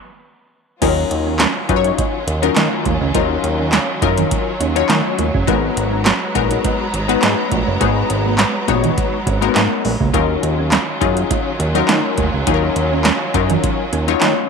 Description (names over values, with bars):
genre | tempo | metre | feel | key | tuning
early-eighties boogie funk | 103 BPM | 4/4 | straight | Eb minor | A4 = 440 Hz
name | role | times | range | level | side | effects
funky polysynth comp | accompaniment | 0.8-14.5 s | F3 to Db5 | -19 LUFS | left 13 dB | chorus
warm studio string section | sustained chords | 0.8-14.5 s | Eb3 to Bb5 | -23 LUFS | right 1 dB | none
mellow electric guitar | riff | 0.8-14.3 s | Ab3 to Gb4 | -27 LUFS | right 14 dB | analog chorus
fat analog bass | bass | 0.8-14.3 s | Gb1 to Eb3 | -20 LUFS | right 2 dB | none
electro analog drum machine | drums | 0.8-14.4 s | crash cymbal, handclaps, hi-hat, kick drum, snare drum | -20 LUFS | right 1 dB | none
congas | percussion | 0.8-14.4 s | none | -23 LUFS | right 14 dB | none
room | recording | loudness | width
light reverb | 1960s-style stereo with parts hard left and right | -14 LUFS | side -5 dB against mid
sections
0.8-14.5 A section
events
stop 0.0-0.8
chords
0.0 N.C.; 0.8 Ebm9; 5.5 Abm9; 10.1 Ebm9